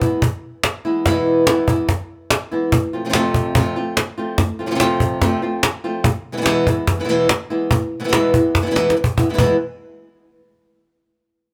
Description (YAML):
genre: flamenco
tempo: 144 BPM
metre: 4/4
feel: straight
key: unclear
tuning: A4 = 440 Hz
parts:
  - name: flamenco guitar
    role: melody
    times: 0.0-9.6 s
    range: E2 to F4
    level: -20 LUFS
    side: equal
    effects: plate reverb
  - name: cajon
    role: percussion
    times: 0.0-9.5 s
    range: none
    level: -20 LUFS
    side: equal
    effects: none
room: moderate studio reverb, RT60 0.6 s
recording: none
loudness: -18 LUFS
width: mono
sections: 0.0-9.4 A section; 9.4-11.1 B section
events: drum fill 8.8-9.4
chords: 0.0 E; 2.7 F; 6.1 E; 9.4 N.C.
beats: 0.23 0.65 | 1.06 1.48 1.89 2.31 | 2.72 3.14 3.55 3.97 | 4.39 4.80 5.22 5.63 | 6.05 6.47 6.88 7.30 | 7.72 8.14 8.55 8.97 | 9.39